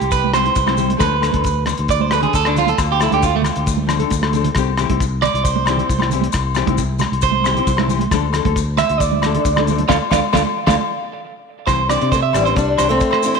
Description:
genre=highlife guitar band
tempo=135 BPM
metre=4/4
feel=straight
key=C major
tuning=A4 = 440 Hz
part: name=electric guitar at the edge of break-up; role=arpeggios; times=0.0-13.4 s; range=A3 to F5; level=-19 LUFS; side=right 9 dB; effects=tape echo
part: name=fingered electric bass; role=bass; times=0.0-13.0 s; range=A1 to C3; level=-21 LUFS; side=left 1 dB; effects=none
part: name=cloth-damped thuddy drum kit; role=drums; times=0.0-13.4 s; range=hi-hat, kick drum, rim click, snare drum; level=-23 LUFS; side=left 1 dB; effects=none
part: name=maracas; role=percussion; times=0.1-13.4 s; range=none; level=-33 LUFS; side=left 17 dB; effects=none
part: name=congas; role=percussion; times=0.2-10.8 s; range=none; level=-25 LUFS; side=right 12 dB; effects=none
part: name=nylon-string guitar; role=accompaniment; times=0.3-13.4 s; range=E3 to A4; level=-24 LUFS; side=left 14 dB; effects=none
part: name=agogo bells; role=percussion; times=0.3-13.2 s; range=none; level=-24 LUFS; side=left 15 dB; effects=none
part: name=picked old ladder-braced acoustic guitar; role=melody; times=12.1-13.4 s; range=E3 to E4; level=-18 LUFS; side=left 2 dB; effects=none
room=moderate echo chamber reverb, RT60 1.8 s, small room ambience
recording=1960s-style stereo with parts hard left and right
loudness=-14 LUFS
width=side -5 dB against mid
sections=0.0-11.7 A section; 11.7-13.4 B section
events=clean electric guitar solo 0.0-11.7; drum fill 4.1-4.6; band accent 9.9-11.7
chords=0.0 C; 1.0 Dm; 4.6 C; 8.1 Dm; 11.7 Cadd9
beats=0.13 0.57 | 1.02 1.46 1.90 2.35 | 2.79 3.23 3.68 4.12 | 4.56 5.01 5.45 5.89 | 6.34 6.78 7.23 7.67 | 8.12 8.56 9.01 9.45 | 9.89 10.34 10.78 11.23 | 11.68 12.12 12.57 13.01

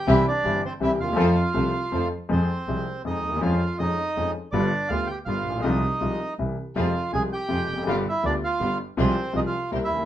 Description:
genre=tango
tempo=162 BPM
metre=3/4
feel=rubato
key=F minor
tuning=A4 = 439 Hz
part: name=bandoneon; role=melody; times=0.0-10.1 s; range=C4 to Ab5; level=-26 LUFS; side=right 2 dB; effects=none
part: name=clear baby grand piano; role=accompaniment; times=0.1-10.0 s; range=G1 to A4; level=-26 LUFS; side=left 3 dB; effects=none
part: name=warm studio string section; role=stabs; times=0.1-2.1, 6.8-9.9 s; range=B3 to Bb4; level=-32 LUFS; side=equal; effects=none
part: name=warm double bass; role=bass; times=0.1-10.1 s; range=F1 to F2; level=-28 LUFS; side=right 2 dB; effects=none
room=moderate studio reverb, RT60 0.5 s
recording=minimal, uncompressed stereo recording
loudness=-22 LUFS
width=side -12 dB against mid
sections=0.0-2.3 A section; 2.3-10.1 B section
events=none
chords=0.1 C; 1.2 F; 2.3 Fm; 3.4 Db/F; 4.5 G7; 5.6 Fm/C; 6.4 C; 6.8 Fm; 7.9 G7; 9.0 Fm/C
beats=| 0.08 0.45 0.81 | 1.18 1.55 1.93 | 2.30 2.68 3.05 | 3.42 3.80 4.17 | 4.53 4.90 5.27 | 5.64 6.01 6.38 | 6.76 7.13 7.50 | 7.87 8.24 8.61 | 8.98 9.35 9.71

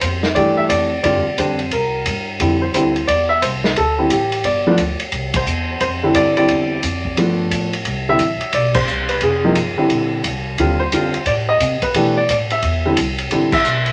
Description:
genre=jazz piano trio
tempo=176 BPM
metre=4/4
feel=swing 64% on 8ths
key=C major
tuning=A4 = 439 Hz
part: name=warm baby grand piano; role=melody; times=0.0-13.9 s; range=C3 to E5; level=-19 LUFS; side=equal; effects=none
part: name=upright bass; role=bass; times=0.0-13.9 s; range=F1 to C3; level=-27 LUFS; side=equal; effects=none
part: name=vintage drum kit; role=drums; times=0.0-13.9 s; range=crash cymbal, hi-hat, kick drum, ride cymbal, snare drum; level=-24 LUFS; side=equal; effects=none
room=moderate studio reverb, RT60 0.6 s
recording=none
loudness=-17 LUFS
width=mono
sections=0.0-7.9 A section; 7.9-13.9 B section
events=band accent 5.3, 8.7, 13.5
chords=0.0 Em7; 1.0 G5; 1.7 C5; 2.4 F5; 3.8 D5; 4.4 G5; 5.1 C; 7.2 G9; 7.9 Cmaj7; 9.2 Fmadd9; 9.9 Bb69; 10.6 Ebmaj9#11; 11.9 A9sus4; 12.6 C; 13.3 Am9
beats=0.01 0.35 0.70 | 1.04 1.38 1.72 2.06 | 2.40 2.74 3.08 3.42 | 3.77 4.11 4.45 4.79 | 5.13 5.47 5.81 6.15 | 6.49 6.83 7.17 7.51 | 7.85 8.20 8.54 8.88 | 9.22 9.56 9.90 10.24 | 10.58 10.93 11.27 11.61 | 11.95 12.29 12.63 12.97 | 13.31 13.65

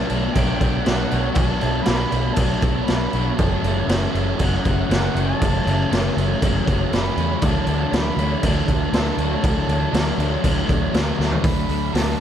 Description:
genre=rock, shoegaze and dream pop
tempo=119 BPM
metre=4/4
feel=straight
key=unclear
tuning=A4 = 440 Hz
part: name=reedy silver concert flute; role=melody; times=0.0-12.2 s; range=F#5 to B5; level=-31 LUFS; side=right 2 dB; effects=analog delay
part: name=electric guitar through a small old amp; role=arpeggios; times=0.0-12.2 s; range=E3 to F#4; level=-32 LUFS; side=right 1 dB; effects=none
part: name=crunchy overdriven guitar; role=riff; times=0.0-12.2 s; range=F#2 to D4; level=-26 LUFS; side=left 13 dB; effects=ensemble chorus
part: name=overdriven electric guitar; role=riff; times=0.0-12.2 s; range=F#2 to D4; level=-27 LUFS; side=right 13 dB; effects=reverse reverb
part: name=vintage muted fingered electric bass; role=bass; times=0.0-12.2 s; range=F#1 to E2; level=-23 LUFS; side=equal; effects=none
part: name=raw garage drum kit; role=drums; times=0.1-12.1 s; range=crash cymbal, hi-hat, kick drum, snare drum, toms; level=-22 LUFS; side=equal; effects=none
room=small room ambience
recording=dark, warm production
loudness=-18 LUFS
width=side -9 dB against mid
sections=0.0-11.4 A section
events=drum fill 11.2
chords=0.0 Bm7; 3.4 F#m7; 7.4 Dadd9; 11.4 D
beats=0.35 0.86 | 1.36 1.87 2.38 2.88 | 3.39 3.89 4.40 4.90 | 5.41 5.91 6.41 6.92 | 7.42 7.92 8.43 8.93 | 9.43 9.94 10.44 10.94 | 11.45 11.95

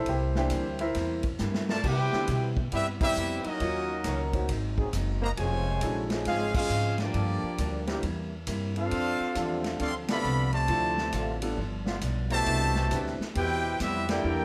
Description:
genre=jazz, big band swing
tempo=136 BPM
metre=4/4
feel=swing 65% on 8ths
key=C major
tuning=A4 = 440 Hz
part: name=clear baby grand piano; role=accompaniment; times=0.0-14.4 s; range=D3 to G5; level=-36 LUFS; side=equal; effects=none
part: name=upright bass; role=bass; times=0.0-14.4 s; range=F1 to C3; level=-34 LUFS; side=equal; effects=none
part: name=vintage hollow-body jazz guitar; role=accompaniment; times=0.1-14.4 s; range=G2 to A4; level=-41 LUFS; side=equal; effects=none
part: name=swinging big-band drum kit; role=drums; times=0.1-14.2 s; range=crash cymbal, hi-hat, kick drum, ride cymbal, snare drum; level=-38 LUFS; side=equal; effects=none
part: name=clear trumpet section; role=melody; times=1.7-14.4 s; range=Bb3 to C6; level=-33 LUFS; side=equal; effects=none
part: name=warm trombone section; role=second line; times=1.7-14.4 s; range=B2 to G4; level=-36 LUFS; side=equal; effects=none
part: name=dark trombone section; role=sustained chords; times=1.8-14.4 s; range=D3 to Bb4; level=-39 LUFS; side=equal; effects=none
room=moderate large studio reverb, RT60 1.1 s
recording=none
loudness=-29 LUFS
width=mono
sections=0.0-1.8 A section; 1.8-14.4 B section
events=grand piano solo 0.0-1.8; drum fill 1.4-1.8; band accent 2.9, 6.5, 10.0, 14.0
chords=0.1 C7; 1.8 Cmaj7; 3.6 Ebm7; 4.5 Ab7; 5.4 Dbmaj7; 7.1 Gm7; 8.0 C7; 8.9 F6; 10.7 Dm7; 11.6 G7; 12.5 Cmaj7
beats=| 0.07 0.51 0.95 1.40 | 1.84 2.28 2.72 3.16 | 3.61 4.05 4.49 4.93 | 5.38 5.82 6.26 6.70 | 7.15 7.59 8.03 8.48 | 8.92 9.36 9.80 10.25 | 10.69 11.13 11.58 12.02 | 12.47 12.91 13.35 13.80 | 14.24

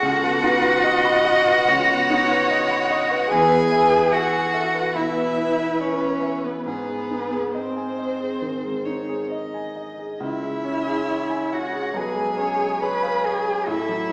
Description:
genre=classical, slow romantic movement for piano quartet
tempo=66-74 BPM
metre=4/4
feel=rubato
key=C# minor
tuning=A4 = 440 Hz
part: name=rich violin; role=melody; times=0.0-14.1 s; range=B4 to B5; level=-26 LUFS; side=equal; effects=none
part: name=rich cello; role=second line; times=0.0-14.1 s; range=B3 to B4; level=-22 LUFS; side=equal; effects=none
part: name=rich violin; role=second line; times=0.0-14.1 s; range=G#4 to D#5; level=-26 LUFS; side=equal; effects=none
part: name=warm grand piano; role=accompaniment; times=0.0-14.1 s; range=B1 to B5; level=-25 LUFS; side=equal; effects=none
room=wet recital hall reverb, RT60 1.5 s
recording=heard from further back in the room, small speaker sound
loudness=-18 LUFS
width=side -29 dB against mid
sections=0.0-14.1 A section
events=none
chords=0.0 B/C#; 3.3 E; 6.7 G#; 10.2 C#m; 11.9 C#7/B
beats=| 0.01 0.83 1.67 2.49 | 3.31 4.12 4.95 5.79 | 6.65 7.54 8.41 9.31 | 10.20 11.08 11.95 12.82 | 13.67

